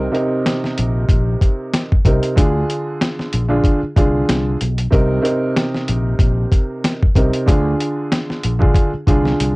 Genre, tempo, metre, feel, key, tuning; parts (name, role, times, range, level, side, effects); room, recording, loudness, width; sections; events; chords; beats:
hip hop, boom-bap hip-hop; 94 BPM; 4/4; swing 54% on 16ths; C minor; A4 = 440 Hz
dark upright piano; accompaniment; 0.0-9.6 s; C3 to Bb4; -19 LUFS; right 1 dB; cassette tape
fretless electric bass; bass; 0.0-9.6 s; Bb1 to D2; -19 LUFS; equal; ensemble chorus
dusty soul sampler-style drum kit; drums; 0.1-9.6 s; hi-hat, kick drum, snare drum; -16 LUFS; equal
little or no reverb; home recording on cassette; -14 LUFS; side -23 dB against mid
0.0-9.6 A section
drum fill 9.4
0.0 Cm7; 2.4 Ddim; 4.9 Cm7; 7.5 Ddim
0.46 1.09 1.73 | 2.37 3.01 3.65 4.29 | 4.92 5.56 6.20 6.84 | 7.48 8.12 8.75 9.39